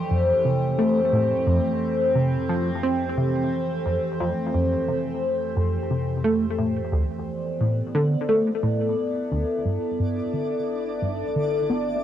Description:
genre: ambient, sequencer-driven space music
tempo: 88 BPM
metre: 4/4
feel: straight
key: F major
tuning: A4 = 443 Hz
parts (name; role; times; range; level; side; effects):
- evolving wavetable pad; sustained chords; 0.0-12.0 s; F2 to D5; -24 LUFS; left 1 dB; chorus, built-in reverb, phaser, cassette tape
- tight sequenced synth; riff; 0.1-11.9 s; D2 to C4; -23 LUFS; equal; chorus, cassette tape, ping-pong delay
- twinkling granular texture; texture; 10.0-12.0 s; D4 to D5; -33 LUFS; right 1 dB; built-in reverb, cassette tape
- warm sub bass; bass; 9.7-12.0 s; G1; -52 LUFS; right 1 dB; none
room: wet booth ambience, RT60 0.2 s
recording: home recording on cassette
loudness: -21 LUFS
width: side -10 dB against mid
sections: 0.0-9.7 A section; 9.7-12.0 B section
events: filter sweep on synth arpeggio sound 9.7-12.0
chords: 0.0 F; 6.9 D5; 9.7 G

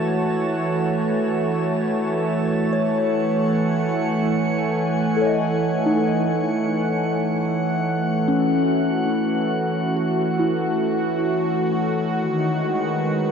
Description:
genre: ambient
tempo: 76 BPM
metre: 3/4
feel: straight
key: unclear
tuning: A4 = 440 Hz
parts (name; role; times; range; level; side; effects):
- warm analog pad; sustained chords; 0.0-13.3 s; D#3 to G#5; -20 LUFS; right 2 dB; chorus
- drifting glass-harmonics texture; texture; 0.0-13.3 s; F#5 to A5; -30 LUFS; left 3 dB; chorus, built-in reverb
- soft synth bell; arpeggios; 2.7-12.2 s; C#4 to D#5; -25 LUFS; left 4 dB; chorus, phaser, diffuse ambient delay
room: wet huge ambient reverb, RT60 7.7 s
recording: dark, warm production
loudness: -19 LUFS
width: side -6 dB against mid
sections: 0.0-2.7 A section; 2.7-13.3 B section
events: fade-out on synth texture 2.7-13.3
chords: 0.0 F#m7; 2.7 Amaj7; 7.4 F#m7; 12.2 G#m7

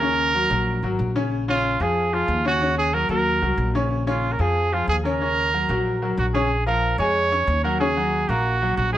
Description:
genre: latin, salsa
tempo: 185 BPM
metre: 4/4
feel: straight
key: Bb minor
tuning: A4 = 440 Hz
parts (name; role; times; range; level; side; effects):
- clear trumpet; melody; 0.0-9.0 s; F4 to Db5; -22 LUFS; right 3 dB; none
- clear baby grand piano; accompaniment; 0.0-9.0 s; Db3 to Db6; -25 LUFS; left 3 dB; none
- upright bass; bass; 0.0-9.0 s; Ab1 to F2; -25 LUFS; equal; none
room: moderate studio reverb, RT60 0.6 s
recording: nothing above 10.6 kHz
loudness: -19 LUFS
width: side -12 dB against mid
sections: 0.0-6.5 A section; 6.5-9.0 B section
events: none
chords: 0.0 Ebm7; 1.3 Bbm7; 2.6 Ebm7; 3.9 Bbm7; 5.2 Ebm7; 6.5 Bbm7; 7.8 Ebm7

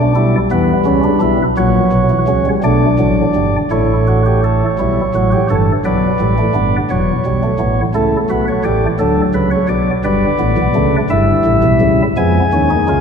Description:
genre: classical, baroque-style 4-part fugue for pipe organ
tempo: 56 BPM (dotted quarters)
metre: 6/8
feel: straight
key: unclear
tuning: A4 = 441 Hz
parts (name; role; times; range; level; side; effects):
- chamber organ, flutes; solo; 0.0-13.0 s; E1 to G#5; -11 LUFS; equal; none
room: wet church reverb, RT60 3.3 s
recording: minimal, uncompressed stereo recording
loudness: -11 LUFS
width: side -6 dB against mid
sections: 0.0-3.7 A section; 3.7-13.0 B section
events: none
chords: 0.0 Bm; 0.5 C#m7b5; 1.6 F#7/A#; 2.6 Bm; 3.7 A7; 4.8 B5; 5.8 Gmaj9; 6.9 C#dim/E; 8.0 A; 9.0 D; 10.0 G; 11.1 C#dim/G; 12.2 C#7

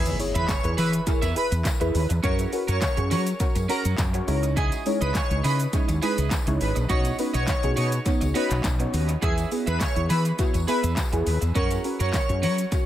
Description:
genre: dance-pop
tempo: 103 BPM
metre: 4/4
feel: straight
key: E lydian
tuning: A4 = 440 Hz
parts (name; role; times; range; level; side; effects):
- deep mellow chord stab; accompaniment; 0.0-12.9 s; G#3 to C#5; -29 LUFS; equal; chorus, sidechain pumping, tape echo
- electric guitar at the edge of break-up; riff; 0.0-12.8 s; C#4 to E5; -33 LUFS; right 6 dB; lush chorus, tape echo
- woody fretless electric bass; bass; 0.0-12.6 s; G#1 to F#3; -24 LUFS; equal; ensemble chorus, sidechain pumping
- impact; sound effects; 0.0-2.2 s; none; -36 LUFS; equal; none
- pop drum kit; drums; 0.1-12.9 s; handclaps, hi-hat, kick drum, shaker, snare drum; -27 LUFS; equal; tape echo
- tambourine; percussion; 0.1-12.9 s; none; -43 LUFS; left 8 dB; tape echo
- airy dreamy lead; melody; 0.3-12.5 s; G#4 to C#5; -30 LUFS; equal; chorus, tape echo
room: light reverb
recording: echo-heavy mix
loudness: -21 LUFS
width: side -12 dB against mid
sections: 0.0-12.9 A section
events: impact 0.0-2.2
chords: 0.0 E; 2.2 F#; 4.3 C#madd9; 6.9 Badd9; 9.2 E; 11.6 F#

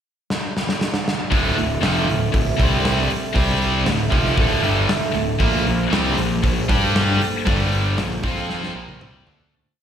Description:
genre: hard rock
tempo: 117 BPM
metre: 4/4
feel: straight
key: D minor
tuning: A4 = 439 Hz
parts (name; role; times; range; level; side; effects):
- gated 80s drum kit; drums; 0.3-9.5 s; hi-hat, kick drum, snare drum, toms; -22 LUFS; equal; none
- glass harmonica; sustained chords; 1.3-9.5 s; G3 to G5; -28 LUFS; right 3 dB; none
- overdriven electric guitar; riff; 1.3-9.5 s; D2 to G4; -24 LUFS; right 10 dB; slapback echo
- scooped high-gain guitar; riff; 1.3-9.5 s; D2 to G4; -24 LUFS; left 11 dB; distortion, slapback echo
- sludgy distorted guitar; riff; 1.3-9.5 s; D2 to G4; -27 LUFS; right 1 dB; none
- fuzz picked electric bass; bass; 1.3-9.5 s; D1 to G2; -24 LUFS; equal; overdrive
room: light reverb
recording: live gig heard through the venue's PA, recital hall reverb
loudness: -17 LUFS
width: side -9 dB against mid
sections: 0.0-1.3 pickup bar; 1.3-9.5 riff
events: drum fill 0.3-1.3, 8.5-9.5; fade-out 7.5-9.5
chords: 0.0 N.C.; 1.3 Dm; 2.6 C5; 3.1 D5; 3.4 C5; 3.9 Dm; 5.4 Bb5; 6.7 G5; 7.2 Bb5; 7.5 G5; 8.0 Bb5; 8.2 F5; 8.7 Bb5

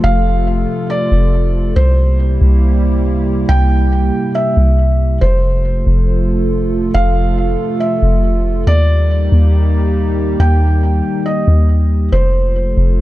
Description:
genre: hip hop, atmospheric cloud-rap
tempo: 139 BPM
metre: 4/4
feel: half-time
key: F major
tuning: A4 = 439 Hz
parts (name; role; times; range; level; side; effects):
- felt-muted upright piano; melody; 0.0-13.0 s; C5 to G5; -21 LUFS; right 1 dB; tape echo
- dark analog pad; sustained chords; 0.0-13.0 s; C3 to A4; -18 LUFS; right 1 dB; chorus
- soft 808-style bass; bass; 0.0-13.0 s; F1 to Eb2; -12 LUFS; equal; none
room: small room ambience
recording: none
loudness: -11 LUFS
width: side -16 dB against mid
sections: 0.0-13.0 A section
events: none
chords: 0.0 F; 1.8 C7; 5.2 F; 8.7 Ebmaj7; 12.1 F

